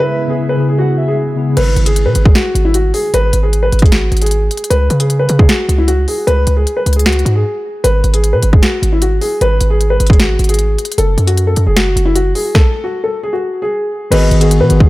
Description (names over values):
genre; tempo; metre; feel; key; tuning
hip hop, trap; 153 BPM; 4/4; half-time; G# phrygian; A4 = 440 Hz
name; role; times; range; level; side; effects
dark baby grand piano; melody; 0.0-14.9 s; E4 to B4; -16 LUFS; left 1 dB; low-pass filter, tape echo
hollow clarinet-like synth lead; second line; 0.0-1.2, 14.1-14.5 s; D#5 to F#5; -24 LUFS; right 2 dB; chorus, phaser, tape echo
mellow tine electric piano; accompaniment; 0.0-1.6, 14.1-14.9 s; C#3 to G#4; -14 LUFS; left 2 dB; low-pass filter
ethereal airy pad; sustained chords; 0.0-1.5 s; C#3 to E4; -23 LUFS; right 1 dB; ensemble chorus, built-in reverb, tremolo, low-pass filter
hard-hitting 808-style bass; bass; 1.6-14.9 s; F#1 to C#3; -13 LUFS; equal; none
trap drum kit; drums; 1.6-14.9 s; crash cymbal, finger snaps, hi-hat, kick drum, snare drum; -13 LUFS; equal; none
room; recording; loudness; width
light reverb, digital ambience; none; -10 LUFS; side -18 dB against mid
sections
0.0-1.6 A section; 1.6-14.1 B section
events
filter sweep 0.0-1.6; break 7.5-7.8; stop 12.5-14.1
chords
0.0 C#m7; 1.6 G#m; 4.7 C#5; 7.8 G#m; 11.0 F#madd9; 14.1 G#m7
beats
| 0.00 0.39 0.78 1.18 | 1.57 1.96 2.35 2.75 | 3.14 3.53 3.92 4.31 | 4.71 5.10 5.49 5.88 | 6.27 6.67 7.06 7.45 | 7.84 8.23 8.63 9.02 | 9.41 9.80 10.20 10.59 | 10.98 11.37 11.76 12.16 | 12.55 12.94 13.33 13.72 | 14.12 14.51